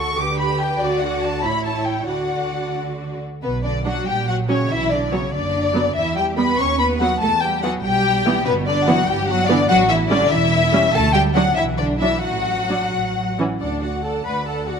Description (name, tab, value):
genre	quick classical-period movement for string orchestra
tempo	87-99 BPM (dotted quarters)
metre	6/8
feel	rubato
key	D major, B minor from 3.4 s, D major from 8.5 s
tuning	A4 = 439 Hz
part	rich studio violin section	melody	0.0-14.8 s	B4 to D6	-21 LUFS	left 3 dB	none
part	rich studio violin section	second line	0.0-14.8 s	B3 to F#5	-25 LUFS	left 2 dB	none
part	rich studio viola section	accompaniment	0.0-14.8 s	E3 to B4	-24 LUFS	right 3 dB	none
part	rich studio cello section	bass	0.0-14.8 s	D2 to C#4	-26 LUFS	right 3 dB	none
part	rich studio double bass section	bass	0.0-14.8 s	E1 to E2	-26 LUFS	right 3 dB	none
room	moderate concert hall reverb, RT60 1.8 s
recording	none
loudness	-17 LUFS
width	side -6 dB against mid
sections	0.0-3.4 A section; 3.4-13.6 B section; 13.6-14.8 A section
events	none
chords	0.2 G/D; 0.8 D; 1.4 A; 2.1 D; 3.4 Bm; 4.1 F#/A#; 4.7 Bm; 6.0 Em; 6.6 B/D#; 7.2 Em; 8.5 Em7/G; 9.7 A7; 10.9 D; 11.6 Bm; 12.2 D/A; 12.9 A; 13.6 D